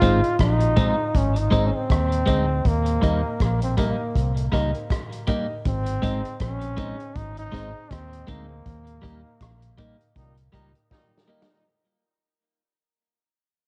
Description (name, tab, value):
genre	roots reggae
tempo	80 BPM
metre	4/4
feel	swing 57% on 16ths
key	Ab major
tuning	A4 = 439 Hz
part	clear trombone	melody	0.0-10.5 s	Bb3 to F4	-29 LUFS	equal	tape echo
part	clean electric guitar	accompaniment	0.0-11.5 s	G3 to Eb4	-30 LUFS	equal	tape echo
part	warm upright piano	stabs	0.0-11.5 s	Eb4 to Eb5	-35 LUFS	equal	none
part	vintage muted fingered electric bass	bass	0.0-10.7 s	Ab1 to Eb2	-27 LUFS	equal	none
part	vintage drum kit	drums	0.0-11.6 s	hi-hat, kick drum, rim click, snare drum	-29 LUFS	equal	cassette tape
part	warm horn section	second line	10.2-11.6 s	Bb2 to Eb4	-57 LUFS	equal	none
room	light reverb, studio reverb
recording	home recording on cassette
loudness	-23 LUFS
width	mono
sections	0.0-11.7 A section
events	fade-out 0.0-11.7; band accent 8.7-11.7; drum fill 10.9-11.7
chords	0.0 Ab; 2.7 Eb; 5.7 Ab; 8.7 Eb